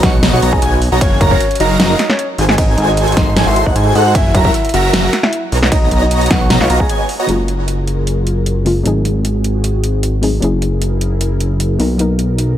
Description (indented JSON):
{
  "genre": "future bass",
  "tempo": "153 BPM",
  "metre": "4/4",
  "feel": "half-time",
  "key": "F# major",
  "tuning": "A4 = 440 Hz",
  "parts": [
    { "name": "dark grand piano", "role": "melody", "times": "0.0-7.0 s", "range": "C#4 to G#5", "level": "-20 LUFS", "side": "equal", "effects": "sidechain pumping, dub echo" },
    { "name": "airy dreamy lead", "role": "arpeggios", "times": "0.0-7.3 s", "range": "F#5 to C#6", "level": "-21 LUFS", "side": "equal", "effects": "chorus, phaser, sidechain pumping" },
    { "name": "supersaw chords", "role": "riff", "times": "0.0-7.3 s", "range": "F#3 to C#6", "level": "-18 LUFS", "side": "right 2 dB", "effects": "phaser, sidechain pumping, low-pass filter, digital delay" },
    { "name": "fat analog bass", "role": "bass", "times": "0.0-12.6 s", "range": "F#1 to G#2", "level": "-15 LUFS", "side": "equal", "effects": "sidechain pumping" },
    { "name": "dubstep drum kit", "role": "drums", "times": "0.0-12.5 s", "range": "hi-hat, ride cymbal, snare drum", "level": "-19 LUFS", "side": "equal", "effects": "none" },
    { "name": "electronic kick drum", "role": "drums", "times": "0.0-6.9 s", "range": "none", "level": "-16 LUFS", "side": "equal", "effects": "none" },
    { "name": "soft round pluck", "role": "accompaniment", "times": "7.3-12.6 s", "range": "C#3 to A#4", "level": "-20 LUFS", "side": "left 2 dB", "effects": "chorus, sidechain pumping, digital delay" },
    { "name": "airy breathy pad", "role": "sustained chords", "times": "7.7-12.6 s", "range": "F#3 to A#4", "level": "-24 LUFS", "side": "left 1 dB", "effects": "chorus, sidechain pumping" }
  ],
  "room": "digital ambience",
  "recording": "none",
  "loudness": "-11 LUFS",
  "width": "side -11 dB against mid",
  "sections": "0.0-7.3 A section; 7.3-12.6 B section",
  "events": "drop 0.0-7.3; break 6.9-7.3; filter sweep on analog synth pad 7.3-12.6",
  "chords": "0.0 Bmaj7; 1.0 F#maj9; 2.6 G#7b9; 4.2 F#9; 5.5 Bmaj7; 7.3 F#maj9; 8.9 G#7b9; 10.4 F#9; 11.8 Bmaj7"
}